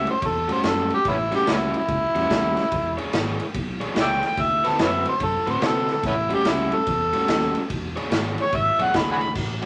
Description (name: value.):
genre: electric blues shuffle.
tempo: 144 BPM.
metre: 4/4.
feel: swing 64% on 8ths.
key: A mixolydian.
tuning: A4 = 442 Hz.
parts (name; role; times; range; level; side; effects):
overdriven harmonica; melody; 0.0-9.3 s; B3 to B5; -24 LUFS; equal; none.
overdriven semi-hollow guitar; riff; 0.0-9.7 s; A2 to C#5; -30 LUFS; equal; none.
fingered electric bass; bass; 0.0-9.6 s; E1 to C3; -34 LUFS; equal; none.
raw garage drum kit; drums; 0.1-9.7 s; crash cymbal, kick drum, ride cymbal, snare drum; -29 LUFS; equal; none.
room: moderate club reverb, RT60 0.8 s.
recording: none.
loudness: -22 LUFS.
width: mono.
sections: 0.0-9.4 A section.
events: harmonica solo 0.0-9.4.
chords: 0.0 A6; 2.7 E6; 4.4 D6; 6.0 A6; 7.7 E6.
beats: 0.22 0.64 | 1.05 1.47 1.89 2.30 | 2.72 3.13 3.55 3.96 | 4.38 4.79 5.21 5.62 | 6.04 6.45 6.87 7.28 | 7.70 8.11 8.53 8.94 | 9.36.